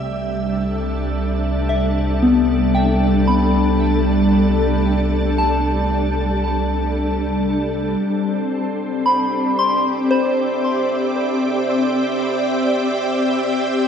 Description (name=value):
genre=ambient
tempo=57 BPM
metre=4/4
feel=straight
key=C major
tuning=A4 = 441 Hz
part: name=soft additive organ-like pad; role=sustained chords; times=0.0-13.9 s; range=G3 to E5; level=-18 LUFS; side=equal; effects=ensemble chorus, built-in reverb, shimmer reverb
part: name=warm sub bass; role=bass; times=0.0-8.0 s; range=C2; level=-22 LUFS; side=equal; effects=none
part: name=bowed-like drone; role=drone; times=0.0-13.9 s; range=C3 to C4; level=-32 LUFS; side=equal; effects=built-in reverb
part: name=soft synth bell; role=arpeggios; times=1.7-13.9 s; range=B3 to C6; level=-22 LUFS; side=left 2 dB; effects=chorus, phaser, tape echo, shimmer reverb
part: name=wind-like tuned noise texture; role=texture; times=10.3-13.9 s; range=E6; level=-40 LUFS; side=right 3 dB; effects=none
room=wet concert hall reverb, RT60 2.2 s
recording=dark, warm production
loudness=-16 LUFS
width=side -7 dB against mid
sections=0.0-8.0 A section; 8.0-13.9 B section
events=fade-in on synth drone 8.0-13.9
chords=0.0 Cmaj9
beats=0.64 1.69 2.75 | 3.80 4.85 5.90 6.96 | 8.01 9.06 10.11 11.17 | 12.22 13.27